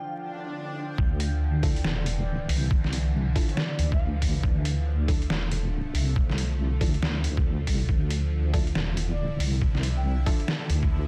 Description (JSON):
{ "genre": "deep dubstep", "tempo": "139 BPM", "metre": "4/4", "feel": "swing 62% on 16ths, half-time", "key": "D minor", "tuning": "A4 = 440 Hz", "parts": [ { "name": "bowed-like drone", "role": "sustained chords", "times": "0.0-11.1 s", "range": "D3 to F4", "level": "-38 LUFS", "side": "equal", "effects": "built-in reverb, phaser" }, { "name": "filtered dub chord stab", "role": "stabs", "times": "0.0-10.4 s", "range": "F3 to A4", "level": "-41 LUFS", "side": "equal", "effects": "chorus, dub echo" }, { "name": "backwards swelling texture", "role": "texture", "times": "0.0-1.0 s", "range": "D4 to G5", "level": "-43 LUFS", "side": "equal", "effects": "built-in reverb" }, { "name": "swell", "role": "sound effects", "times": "0.2-1.0 s", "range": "none", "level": "-40 LUFS", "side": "equal", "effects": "none" }, { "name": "deep soft wobble bass", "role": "bass", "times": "1.0-11.1 s", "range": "E1 to D2", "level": "-28 LUFS", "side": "equal", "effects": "chorus" }, { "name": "electronic kick drum", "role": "drums", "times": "1.0-10.9 s", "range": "none", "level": "-27 LUFS", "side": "equal", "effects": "none" }, { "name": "trip hop sampler-style drum kit", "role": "drums", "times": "1.2-10.8 s", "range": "hi-hat, snare drum", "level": "-34 LUFS", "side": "equal", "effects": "none" }, { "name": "bright reedy low ney", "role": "melody", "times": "2.2-4.2, 9.1-10.1 s", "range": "D5 to G5", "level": "-43 LUFS", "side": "equal", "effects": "dub echo" } ], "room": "light reverb, digital ambience", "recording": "dense, heavily limited modern master, vinyl crackle", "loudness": "-26 LUFS", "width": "mono", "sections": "1.0-11.1 A section", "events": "swell 0.2-1.0; drop 1.0-11.1", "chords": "0.0 Dm; 1.0 Dmadd9" }